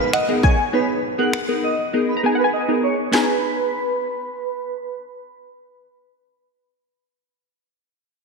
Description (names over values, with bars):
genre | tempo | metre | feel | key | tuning
dance-pop | 100 BPM | 4/4 | straight | G# minor | A4 = 441 Hz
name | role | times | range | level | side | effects
airy dreamy lead | melody | 0.0-4.9 s | B4 to F#5 | -24 LUFS | right 3 dB | chorus, phaser, low-pass filter, tape echo
wide unison pluck | melody | 0.0-7.0 s | E#5 to A#5 | -24 LUFS | left 3 dB | analog chorus, low-pass filter, tape echo
wavetable chord stab | accompaniment | 0.0-7.0 s | B3 to A#5 | -21 LUFS | left 1 dB | analog chorus, sidechain pumping, low-pass filter
downlifter | sound effects | 0.0-3.1 s | none | -37 LUFS | left 1 dB | none
house drum kit | drums | 0.1-3.3 s | finger snaps, handclaps, kick drum, snare drum | -22 LUFS | equal | none
room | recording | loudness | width
wet lush hall reverb, RT60 2.3 s | dreamy mix soaked in reverb | -18 LUFS | side -4 dB against mid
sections
0.0-3.1 A section; 3.1-5.5 B section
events
silent gap 2.5-3.1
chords
0.0 G#madd9